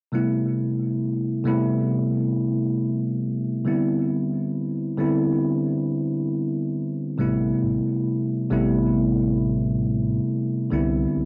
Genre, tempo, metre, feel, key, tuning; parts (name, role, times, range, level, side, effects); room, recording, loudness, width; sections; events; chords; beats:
vaporwave; 68 BPM; 4/4; swing 55% on 16ths; A4 = 438 Hz
bell-like tine electric piano; accompaniment; 0.1-11.3 s; C3 to E4; -24 LUFS; equal; subtle chorus, vintage 12-bit sampler grit, cassette tape, analog delay
chorused synth bass; bass; 7.2-11.3 s; A1 to C2; -31 LUFS; equal; tube saturation
wet booth ambience, RT60 0.2 s; home recording on cassette; -24 LUFS; mono
0.1-11.3 A section
0.1 Am9; 3.7 Cmaj9; 7.2 Am9; 10.7 Cmaj9
| 0.13 1.01 1.90 2.78 | 3.66 4.54 5.43 6.31 | 7.19 8.07 8.96 9.84 | 10.72